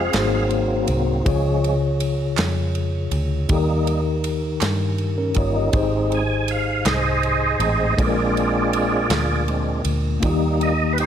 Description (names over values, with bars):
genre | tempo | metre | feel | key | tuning
slow gospel | 54 BPM (dotted quarters) | 6/8 | straight | Ab major | A4 = 441 Hz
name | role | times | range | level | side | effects
mellow tine electric piano | accompaniment | 0.0-11.1 s | Ab2 to Eb5 | -23 LUFS | left 3 dB | medium stereo tremolo
percussive tonewheel organ | sustained chords | 0.0-11.1 s | F3 to Ab5 | -23 LUFS | right 3 dB | slow rotary speaker, overdrive, chorus vibrato
vintage muted fingered electric bass | bass | 0.0-11.1 s | F1 to G2 | -23 LUFS | equal | none
modern studio drum kit | drums | 0.1-11.1 s | kick drum, ride cymbal, snare drum | -27 LUFS | equal | none
group handclap | percussion | 0.1-9.5 s | none | -31 LUFS | right 10 dB | none
room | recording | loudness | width
light reverb, studio ambience | none | -18 LUFS | side -9 dB against mid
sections
0.0-11.1 A section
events
tonewheel organ solo 0.0-11.1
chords
0.1 Ab9; 1.3 Db; 3.5 Eb; 5.7 Ab; 8.0 Bb7; 10.2 Eb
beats
0.14 | 1.26 2.38 | 3.50 4.62 | 5.74 6.87 | 7.99 9.11 | 10.23